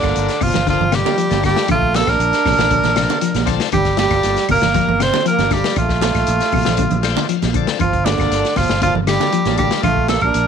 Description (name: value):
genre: afrobeat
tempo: 118 BPM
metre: 4/4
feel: straight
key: G minor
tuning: A4 = 440 Hz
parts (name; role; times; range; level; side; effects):
- edgy tenor saxophone; melody; 0.0-10.5 s; D4 to C5; -18 LUFS; equal; none
- clear trombone; second line; 0.0-10.5 s; D3 to D4; -22 LUFS; right 13 dB; none
- bright tonewheel organ; accompaniment; 0.0-9.9 s; Bb3 to G5; -28 LUFS; left 14 dB; overdrive, slow rotary speaker
- fingered electric bass; bass; 0.0-10.5 s; G1 to Bb1; -21 LUFS; equal; none
- crunchy breakbeat drum kit; drums; 0.0-10.5 s; hi-hat, kick drum, snare drum; -22 LUFS; left 5 dB; none
- claves; percussion; 0.0-10.4 s; none; -31 LUFS; left 15 dB; none
- congas; percussion; 0.0-10.3 s; none; -24 LUFS; right 12 dB; none
- mellow electric guitar; arpeggios; 0.4-10.0 s; C3 to F3; -23 LUFS; left 13 dB; spring reverb
room: light reverb, studio ambience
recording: 1960s-style stereo with parts hard left and right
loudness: -14 LUFS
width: side -7 dB against mid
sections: 0.0-10.5 A section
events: tonewheel organ fill 6.8-7.8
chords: 0.0 Gm7; 1.7 Bbmaj7; 3.7 Gm7; 5.8 Bbmaj7; 7.8 Gm7; 9.8 Bbmaj7